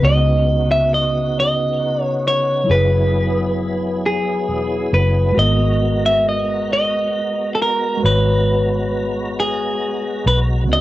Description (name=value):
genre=R&B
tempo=45 BPM (dotted quarters)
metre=6/8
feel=straight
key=G# minor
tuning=A4 = 438 Hz
part: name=clean electric guitar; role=melody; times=0.0-10.8 s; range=G#4 to E5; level=-18 LUFS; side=equal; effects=cassette tape
part: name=mellow tine electric piano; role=accompaniment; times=0.0-10.8 s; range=C#3 to D#5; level=-22 LUFS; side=equal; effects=medium stereo tremolo, cassette tape
part: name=tonewheel organ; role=sustained chords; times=0.0-10.8 s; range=C#3 to A#5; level=-27 LUFS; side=equal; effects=overdrive, chorus vibrato, slow rotary speaker, cassette tape
part: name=vintage muted fingered electric bass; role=bass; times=0.0-10.8 s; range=E1 to C#2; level=-19 LUFS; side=equal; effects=tube saturation
room=light reverb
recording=home recording on cassette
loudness=-15 LUFS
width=side -16 dB against mid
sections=0.0-10.8 A section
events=none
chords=0.0 C#9sus4; 2.7 F#9sus4; 5.4 G#m9